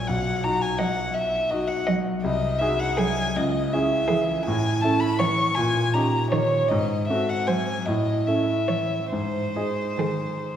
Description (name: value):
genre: classical, slow romantic movement for piano quartet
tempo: 46-58 BPM (dotted quarters)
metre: 6/8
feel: rubato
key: unclear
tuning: A4 = 439 Hz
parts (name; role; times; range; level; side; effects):
- warm violin; melody; 0.0-10.6 s; B#4 to C#6; -25 LUFS; left 2 dB; none
- clear concert grand piano; accompaniment; 0.0-10.6 s; A#1 to D#5; -25 LUFS; right 1 dB; none
- rich violin; second line; 0.8-10.3 s; G#4 to D#5; -32 LUFS; equal; none
- warm cello; second line; 0.8-10.3 s; D#3 to F#3; -30 LUFS; right 2 dB; none
room: wet recital hall reverb, RT60 1.7 s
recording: heard from further back in the room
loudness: -21 LUFS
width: side -9 dB against mid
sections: 0.0-10.6 A section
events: none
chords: 0.1 B; 2.2 G#7/B#; 3.4 C#m; 4.5 A; 5.6 D#7/A#; 6.7 G#7b9; 7.9 A; 9.1 G#